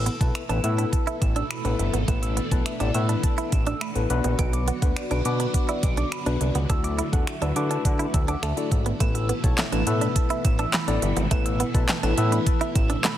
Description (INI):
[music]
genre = dance-pop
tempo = 104 BPM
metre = 4/4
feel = straight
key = unclear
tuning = A4 = 439 Hz
[part]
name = tine electric piano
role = accompaniment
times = 0.0-12.9 s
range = B3 to A5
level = -30 LUFS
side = left 6 dB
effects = sidechain pumping
[part]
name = string machine, full ensemble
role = sustained chords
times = 0.0-13.2 s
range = B2 to F#4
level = -32 LUFS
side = equal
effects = phaser, ensemble chorus, sidechain pumping
[part]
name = fat analog bass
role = bass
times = 0.0-13.0 s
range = G1 to D3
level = -25 LUFS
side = equal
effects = sidechain pumping
[part]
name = direct-recorded clean electric guitar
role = riff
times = 0.1-13.1 s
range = A3 to E4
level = -32 LUFS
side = right 6 dB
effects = analog chorus
[part]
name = smooth R&B drum kit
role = drums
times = 0.1-13.2 s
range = finger snaps, handclaps, hi-hat, kick drum, snare drum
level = -25 LUFS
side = equal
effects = soft clipping on snare
[part]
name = soft round pluck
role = arpeggios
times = 0.2-13.1 s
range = D5 to E7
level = -33 LUFS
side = right 3 dB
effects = chorus, sidechain pumping, ping-pong delay
[sound]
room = light reverb, digital ambience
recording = dense, heavily limited modern master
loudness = -21 LUFS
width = side -12 dB against mid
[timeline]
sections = 0.0-13.2 A section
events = tine electric piano fill 7.8-9.0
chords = 0.0 Asus2; 4.1 Bm; 6.7 Dadd9; 9.0 Asus2